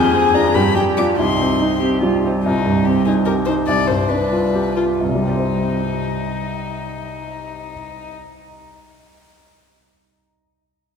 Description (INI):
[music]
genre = quick classical-period movement for piano trio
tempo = 84-99 BPM (dotted quarters)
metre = 6/8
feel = rubato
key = C minor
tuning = A4 = 440 Hz
[part]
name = warm violin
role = melody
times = 0.0-8.1 s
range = Eb4 to D6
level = -23 LUFS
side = left 7 dB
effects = none
[part]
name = dark cello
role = second line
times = 0.0-2.3 s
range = Eb4 to Ab4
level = -22 LUFS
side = right 3 dB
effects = none
[part]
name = bright grand piano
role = accompaniment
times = 0.0-8.5 s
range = C2 to C5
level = -18 LUFS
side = equal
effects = none
[sound]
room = wet church reverb, RT60 3.3 s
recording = recorded in a church or concert hall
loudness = -15 LUFS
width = side -6 dB against mid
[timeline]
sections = 0.0-2.4 A section; 2.4-5.0 B section; 5.0-7.7 C section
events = slowing down 1.8-5.0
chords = 0.0 Dm7b5/F; 0.5 G5; 1.2 Cm; 3.7 G7/C; 5.0 Cm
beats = 0.54 | 1.17 1.81 | 2.44 3.06 | 3.67 4.31 | 5.00 5.68 | 6.36 7.03